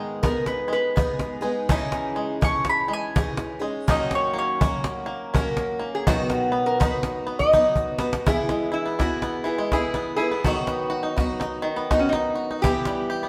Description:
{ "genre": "acoustic folk duo or small band", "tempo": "82 BPM", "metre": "3/4", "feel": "swing 62% on 8ths", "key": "B major", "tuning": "A4 = 440 Hz", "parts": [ { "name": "mandolin", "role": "melody", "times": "0.0-6.5 s", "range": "C#5 to C#6", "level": "-29 LUFS", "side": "equal", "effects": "none" }, { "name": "picked twelve-string acoustic guitar", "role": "accompaniment", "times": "0.0-13.3 s", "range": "F#2 to G#4", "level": "-30 LUFS", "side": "equal", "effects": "none" }, { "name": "bluegrass banjo", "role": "arpeggios", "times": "0.0-13.3 s", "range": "D#3 to G4", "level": "-32 LUFS", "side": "equal", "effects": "none" }, { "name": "metal-body resonator slide guitar", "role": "second line", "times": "0.2-13.3 s", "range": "C#4 to D#5", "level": "-27 LUFS", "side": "equal", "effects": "none" }, { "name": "cajon", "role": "percussion", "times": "0.2-13.3 s", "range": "none", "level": "-27 LUFS", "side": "equal", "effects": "none" } ], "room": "wet stone room reverb, RT60 1.3 s", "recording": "band playing live in one room", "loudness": "-24 LUFS", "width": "mono", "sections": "0.0-8.3 A section; 8.3-13.3 B section", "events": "mandolin solo 0.0-8.3; drum fill 7.4-8.3; resonator guitar played with a steel bar solo 8.3-13.3", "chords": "0.0 G#m; 1.7 C#madd9; 3.9 F#6; 6.1 B; 8.3 E; 10.5 B/D#; 12.6 Em" }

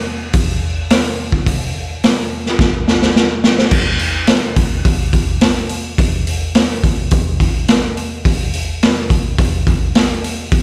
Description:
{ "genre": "rock", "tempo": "106 BPM", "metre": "4/4", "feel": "straight", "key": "none", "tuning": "none", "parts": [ { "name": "raw garage drum kit", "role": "drums", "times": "0.3-10.6 s", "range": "crash cymbal, hi-hat, kick drum, snare drum", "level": "-15 LUFS", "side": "equal", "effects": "none" } ], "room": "light reverb", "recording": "live gig heard through the venue's PA, recital hall reverb", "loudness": "-15 LUFS", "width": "mono", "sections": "0.0-3.7 A section; 3.7-10.6 B section", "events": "drum fill 2.6-3.7", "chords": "none" }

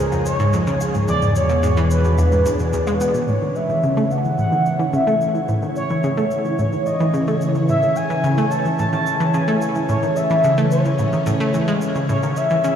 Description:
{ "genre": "ambient, sequencer-driven space music", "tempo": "109 BPM", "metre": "4/4", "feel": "straight", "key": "A lydian from 3.3 s", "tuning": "A4 = 439 Hz", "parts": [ { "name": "expressive synth lead", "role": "melody", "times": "0.0-12.8 s", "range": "Bb4 to A5", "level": "-21 LUFS", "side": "equal", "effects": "lush chorus, tape echo" }, { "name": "phased analog pad", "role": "sustained chords", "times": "0.0-12.8 s", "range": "B2 to C#5", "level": "-22 LUFS", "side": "equal", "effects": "phaser, chorus" }, { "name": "analog pluck", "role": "riff", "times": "0.0-12.7 s", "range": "E2 to B3", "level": "-21 LUFS", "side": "equal", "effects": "chorus, tape echo" }, { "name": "fat analog bass", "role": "bass", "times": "0.0-3.3 s", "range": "Db2", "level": "-21 LUFS", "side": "equal", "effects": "none" }, { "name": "wind-like tuned noise texture", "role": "texture", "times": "0.0-12.8 s", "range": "Ab3 to G#6", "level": "-34 LUFS", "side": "right 1 dB", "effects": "built-in reverb" }, { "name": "shaker and woodblock", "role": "percussion", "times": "0.1-12.8 s", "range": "none", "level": "-40 LUFS", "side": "left 1 dB", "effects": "tape echo" } ], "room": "wet huge ambient reverb, RT60 7.8 s", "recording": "played on a big sound system in a bare room, cassette tape, large studio reverb", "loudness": "-16 LUFS", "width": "side -8 dB against mid", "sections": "0.0-3.3 A section; 3.3-12.8 B section", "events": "fade-in on drum 3.3-12.8", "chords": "0.0 Dbadd9; 1.1 E7; 3.3 A" }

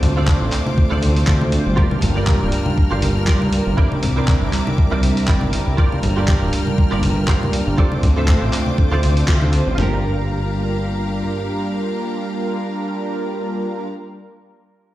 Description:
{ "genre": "nu-disco, nu disco", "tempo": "120 BPM", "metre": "4/4", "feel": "swing 56% on 16ths", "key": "G dorian", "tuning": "A4 = 439 Hz", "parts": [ { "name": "mellow synth brass", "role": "accompaniment", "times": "0.0-13.9 s", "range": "G3 to C5", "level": "-23 LUFS", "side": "right 1 dB", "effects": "chorus, ping-pong delay" }, { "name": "clear symphonic string section", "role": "sustained chords", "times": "0.0-13.9 s", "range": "F4 to F6", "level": "-31 LUFS", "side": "left 3 dB", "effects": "sidechain pumping" }, { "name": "fat analog bass", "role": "bass", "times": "0.0-11.2 s", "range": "D1 to G2", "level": "-19 LUFS", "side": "equal", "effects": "sidechain pumping" }, { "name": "dusty soul sampler-style drum kit", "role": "drums", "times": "0.0-9.6 s", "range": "handclaps, hi-hat", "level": "-27 LUFS", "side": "equal", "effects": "none" }, { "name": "congas", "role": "percussion", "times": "0.0-9.5 s", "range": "none", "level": "-25 LUFS", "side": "left 1 dB", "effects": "none" }, { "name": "direct-recorded clean electric guitar", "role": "riff", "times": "0.2-13.9 s", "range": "E4 to G5", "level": "-28 LUFS", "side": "right 3 dB", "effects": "ensemble chorus, ping-pong delay" }, { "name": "dusty soul sampler-style drum kit", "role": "drums", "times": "0.3-9.9 s", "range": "kick drum, snare drum, toms", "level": "-16 LUFS", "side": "equal", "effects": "none" } ], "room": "little or no reverb", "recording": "played on a big sound system in a bare room, large studio reverb", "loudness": "-16 LUFS", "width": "side -15 dB against mid", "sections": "0.0-9.8 A section; 9.8-13.8 B section", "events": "drop 0.0-9.8; clean electric guitar fill 4.8-5.8; band accent 9.3", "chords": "0.0 Dm7; 1.8 Gm7; 3.8 C9; 5.8 Gm7; 7.8 Dm7; 9.8 Gm7" }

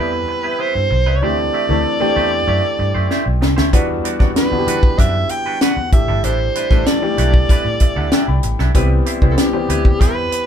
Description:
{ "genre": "polished 1980s jazz-funk pop", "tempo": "96 BPM", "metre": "4/4", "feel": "straight", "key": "unclear", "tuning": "A4 = 443 Hz", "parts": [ { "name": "breathy alto saxophone", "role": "melody", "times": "0.0-10.5 s", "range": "G4 to G5", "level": "-20 LUFS", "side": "right 3 dB", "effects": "none" }, { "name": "warm baby grand piano", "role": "accompaniment", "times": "0.0-10.5 s", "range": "D3 to B5", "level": "-22 LUFS", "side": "left 4 dB", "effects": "none" }, { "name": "semi-hollow electric guitar", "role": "riff", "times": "0.0-10.4 s", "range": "G3 to D5", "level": "-26 LUFS", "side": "right 4 dB", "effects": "none" }, { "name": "vintage muted fingered electric bass", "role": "bass", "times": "0.0-10.2 s", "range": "G1 to E3", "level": "-19 LUFS", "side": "equal", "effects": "none" }, { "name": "tight funk drum kit", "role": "drums", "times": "3.1-10.5 s", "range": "hi-hat, kick drum, snare drum", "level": "-15 LUFS", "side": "equal", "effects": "none" } ], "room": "moderate small room reverb, RT60 0.6 s", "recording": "band playing live in one room", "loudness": "-13 LUFS", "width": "side -8 dB against mid", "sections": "0.0-10.5 A section", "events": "drum fill 3.1-3.7; grand piano fill 7.5-8.8", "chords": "0.0 Cmaj7; 1.2 D9sus4; 3.7 Em9; 5.9 A7sus4; 8.8 Cmaj7" }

